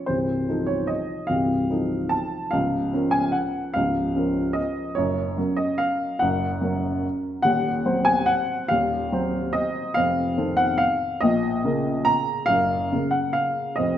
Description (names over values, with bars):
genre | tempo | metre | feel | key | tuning
classical, piano waltz | 136-155 BPM | 3/4 | rubato | Bb minor | A4 = 440 Hz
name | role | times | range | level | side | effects
warm upright piano | solo | 0.0-14.0 s | C1 to Bb5 | -21 LUFS | equal | none
room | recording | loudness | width
wet recital hall reverb, RT60 1.6 s | none | -21 LUFS | side -10 dB against mid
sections
0.0-14.0 A section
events
none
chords
0.1 F7/C; 2.5 Bbm/Db; 5.0 Gb; 7.4 Cdim/Eb; 10.0 F7; 11.2 Bbm; 12.5 Gb